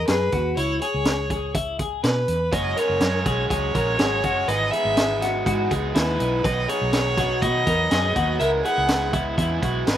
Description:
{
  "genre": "jangly indie pop",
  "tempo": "123 BPM",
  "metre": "4/4",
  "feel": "straight",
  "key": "unclear",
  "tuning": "A4 = 440 Hz",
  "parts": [
    { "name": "warm violin", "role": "melody", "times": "0.0-10.0 s", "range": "B4 to F#5", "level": "-25 LUFS", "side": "right 1 dB", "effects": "slapback echo" },
    { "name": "twelve-string electric guitar", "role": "arpeggios", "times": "0.0-10.0 s", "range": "E4 to C#5", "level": "-25 LUFS", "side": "left 3 dB", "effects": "slapback echo" },
    { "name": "vintage muted fingered electric bass", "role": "bass", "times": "0.0-10.0 s", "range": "F#1 to B2", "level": "-27 LUFS", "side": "right 1 dB", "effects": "none" },
    { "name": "raw garage drum kit", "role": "drums", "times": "0.1-10.0 s", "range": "hi-hat, kick drum, snare drum", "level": "-25 LUFS", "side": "equal", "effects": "none" },
    { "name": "overdriven semi-hollow guitar", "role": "accompaniment", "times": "2.5-10.0 s", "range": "G#2 to F#4", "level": "-29 LUFS", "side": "right 6 dB", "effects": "slapback echo" }
  ],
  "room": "little or no reverb",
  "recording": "recorded outdoors, with no room sound",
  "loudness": "-20 LUFS",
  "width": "side -10 dB against mid",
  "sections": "0.0-10.0 A section",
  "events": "none",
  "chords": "0.0 B; 0.6 C#m7; 2.5 F#sus2; 4.5 Emaj7/G#; 6.4 B; 8.4 C#m7"
}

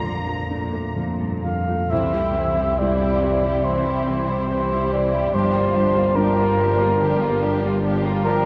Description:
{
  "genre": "cinematic",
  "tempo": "62-73 BPM",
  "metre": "4/4",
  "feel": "rubato",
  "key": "unclear",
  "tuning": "A4 = 442 Hz",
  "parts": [
    { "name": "muted symphonic violin section", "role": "melody", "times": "0.0-8.5 s", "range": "E4 to Bb5", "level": "-35 LUFS", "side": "equal", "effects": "none" },
    { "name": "dark grand piano", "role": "accompaniment", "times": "0.0-8.5 s", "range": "Bb1 to F4", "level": "-29 LUFS", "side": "equal", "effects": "none" },
    { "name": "concert harp", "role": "arpeggios", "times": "0.0-8.5 s", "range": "G2 to A4", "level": "-30 LUFS", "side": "equal", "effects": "none" },
    { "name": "muted studio cello section", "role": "bass", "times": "0.0-8.5 s", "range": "G2 to D3", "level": "-33 LUFS", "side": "equal", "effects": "none" },
    { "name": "dark cor anglais", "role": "second line", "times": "1.4-8.5 s", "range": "Bb4 to F5", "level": "-24 LUFS", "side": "equal", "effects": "none" },
    { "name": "muted studio violin section", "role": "second line", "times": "1.9-8.5 s", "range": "Bb3 to E4", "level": "-30 LUFS", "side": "equal", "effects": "none" },
    { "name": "muted studio viola section", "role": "accompaniment", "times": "1.9-8.5 s", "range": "E3 to G3", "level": "-32 LUFS", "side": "equal", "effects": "none" },
    { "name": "muted studio double bass section", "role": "bass", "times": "1.9-8.5 s", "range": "G1 to C2", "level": "-29 LUFS", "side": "equal", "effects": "none" }
  ],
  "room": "wet cathedral reverb, RT60 5.6 s",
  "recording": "recorded in a church or concert hall",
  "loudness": "-21 LUFS",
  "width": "mono",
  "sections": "0.0-1.9 A section; 1.9-8.5 B section",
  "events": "none",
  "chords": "0.0 Bbmaj7; 1.9 C; 5.3 Gm7"
}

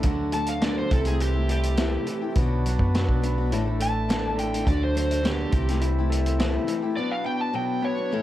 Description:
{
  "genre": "folk rock and heartland rock",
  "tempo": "104 BPM",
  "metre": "4/4",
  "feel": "straight",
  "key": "unclear",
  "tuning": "A4 = 440 Hz",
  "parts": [
    { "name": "picked steel-string acoustic guitar", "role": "accompaniment", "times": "0.0-8.2 s", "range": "A2 to A4", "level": "-30 LUFS", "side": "left 6 dB", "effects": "none" },
    { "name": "hand-pumped harmonium", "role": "sustained chords", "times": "0.0-8.2 s", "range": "C4 to B4", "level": "-37 LUFS", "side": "right 4 dB", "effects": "none" },
    { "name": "electric guitar through a small old amp", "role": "riff", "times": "0.0-8.2 s", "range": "A2 to E4", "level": "-30 LUFS", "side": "right 1 dB", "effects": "none" },
    { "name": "hollow-body short-scale picked electric bass", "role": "bass", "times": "0.0-6.6 s", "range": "A1 to F#2", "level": "-25 LUFS", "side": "equal", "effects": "none" },
    { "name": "vintage drum kit", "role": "drums", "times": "0.0-6.8 s", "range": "hi-hat, kick drum, snare drum", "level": "-27 LUFS", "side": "equal", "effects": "none" },
    { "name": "overdriven slide guitar", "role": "melody", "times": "0.3-8.2 s", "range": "G4 to A5", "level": "-29 LUFS", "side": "right 1 dB", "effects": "none" }
  ],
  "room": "studio reverb",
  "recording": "dark, warm production",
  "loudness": "-22 LUFS",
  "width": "side -13 dB against mid",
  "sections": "0.0-8.2 A section",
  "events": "electric slide guitar solo 0.0-8.2; break 7.0-8.2",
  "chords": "0.0 D; 0.9 C6; 2.4 Bm; 3.5 Asus4; 4.7 D; 5.5 C6; 7.0 Bm"
}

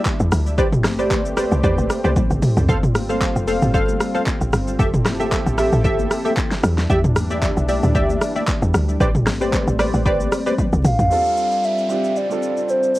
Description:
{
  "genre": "amapiano",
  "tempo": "114 BPM",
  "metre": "4/4",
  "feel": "swing 55% on 16ths",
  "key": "A minor",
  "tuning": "A4 = 441 Hz",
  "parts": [
    { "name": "warm analog pad", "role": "sustained chords", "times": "0.0-13.0 s", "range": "E3 to A4", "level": "-28 LUFS", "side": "equal", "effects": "chorus, sidechain pumping, cassette tape" },
    { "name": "deep house drum kit", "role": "drums", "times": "0.1-13.0 s", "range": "handclaps, hi-hat, kick drum, rim click, shaker, snare drum, toms", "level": "-20 LUFS", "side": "equal", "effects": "none" },
    { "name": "woody log drum bass", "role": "bass", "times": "0.2-11.1 s", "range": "F1 to E2", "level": "-21 LUFS", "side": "equal", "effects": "none" },
    { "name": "congas", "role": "percussion", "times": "0.3-11.0 s", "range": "none", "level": "-30 LUFS", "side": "left 6 dB", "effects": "none" },
    { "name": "punchy chord stab", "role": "stabs", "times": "0.6-10.5 s", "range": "G4 to F5", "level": "-22 LUFS", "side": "equal", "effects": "chorus, cassette tape, tape echo" },
    { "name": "hollow clarinet-like synth lead", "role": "melody", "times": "10.9-13.0 s", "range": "C5 to F5", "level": "-18 LUFS", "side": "equal", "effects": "chorus" },
    { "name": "warm grand piano", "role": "accompaniment", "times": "11.1-13.0 s", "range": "G3 to A4", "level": "-25 LUFS", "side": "right 6 dB", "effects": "cassette tape" },
    { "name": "downlifter", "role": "sound effects", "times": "11.1-13.0 s", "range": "none", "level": "-34 LUFS", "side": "right 2 dB", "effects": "none" }
  ],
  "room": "light reverb",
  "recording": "home recording on cassette, vinyl crackle",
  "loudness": "-16 LUFS",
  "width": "side -17 dB against mid",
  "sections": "0.0-11.1 A section; 11.1-13.0 B section",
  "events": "drop 0.0-11.1; drum fill 2.2-2.7, 10.6-11.1",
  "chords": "0.0 Em7; 0.6 Am11; 2.7 G9sus4; 4.8 Fmaj9; 6.6 Em7; 9.0 Am11; 11.1 G9sus4"
}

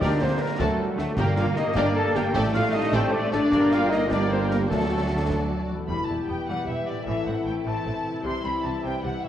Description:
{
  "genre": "cinematic, heroic adventure film score",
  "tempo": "102 BPM (dotted quarters)",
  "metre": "6/8",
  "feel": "straight",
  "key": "G minor, E minor from 5.9 s",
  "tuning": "A4 = 440 Hz",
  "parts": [
    { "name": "rich symphonic violin section", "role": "melody", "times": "0.0-9.3 s", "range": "A4 to C6", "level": "-35 LUFS", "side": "left 1 dB", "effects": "none" },
    { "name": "dark symphonic violin section", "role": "second line", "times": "0.0-9.3 s", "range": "E4 to A5", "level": "-36 LUFS", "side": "equal", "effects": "none" },
    { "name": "small flute group", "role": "second line", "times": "0.0-9.3 s", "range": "A4 to C6", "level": "-34 LUFS", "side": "left 2 dB", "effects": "none" },
    { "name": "warm oboe", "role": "second line", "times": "0.0-5.3 s", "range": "A4 to A5", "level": "-33 LUFS", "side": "right 1 dB", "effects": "none" },
    { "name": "warm studio viola section", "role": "accompaniment", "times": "0.0-9.3 s", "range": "C3 to Bb4", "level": "-34 LUFS", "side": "equal", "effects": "none" },
    { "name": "mellow French horn section", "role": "sustained chords", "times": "0.0-9.3 s", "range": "A3 to A4", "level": "-28 LUFS", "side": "left 2 dB", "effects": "none" },
    { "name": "warm trombone section", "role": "sustained chords", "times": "0.0-9.3 s", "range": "E3 to Bb3", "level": "-33 LUFS", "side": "right 4 dB", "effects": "none" },
    { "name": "concert harp", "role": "arpeggios", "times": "0.0-9.3 s", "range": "G2 to Bb5", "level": "-34 LUFS", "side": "left 5 dB", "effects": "none" },
    { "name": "dark tuba", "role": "bass", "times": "0.0-5.7 s", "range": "G1 to D2", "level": "-32 LUFS", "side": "right 2 dB", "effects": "none" },
    { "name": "rich symphonic cello section", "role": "bass", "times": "0.0-9.1 s", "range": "E2 to Bb3", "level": "-31 LUFS", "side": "right 2 dB", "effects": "none" },
    { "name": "warm symphonic double bass section", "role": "bass", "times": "0.0-9.1 s", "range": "E1 to D2", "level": "-31 LUFS", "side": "right 2 dB", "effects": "none" },
    { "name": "concert snare drum, concert bass drum and clash cymbals", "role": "drums", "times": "0.0-5.5 s", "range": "none", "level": "-34 LUFS", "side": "equal", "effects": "none" },
    { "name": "timpani", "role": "percussion", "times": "0.0-1.7, 4.7-5.3 s", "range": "G2 to D3", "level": "-33 LUFS", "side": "equal", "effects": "none" }
  ],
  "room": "wet scoring stage reverb, RT60 1.8 s",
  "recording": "worn, warbling old tape, cassette tape, warbly pitch drift",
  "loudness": "-22 LUFS",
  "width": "side -10 dB against mid",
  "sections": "0.0-5.9 A section; 5.9-9.3 B section",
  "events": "none",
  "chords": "0.0 Gm/D; 0.6 D; 1.2 Gm; 2.3 Dsus4/A; 3.5 Gm; 4.7 D; 5.9 Em; 7.1 Am; 8.3 C"
}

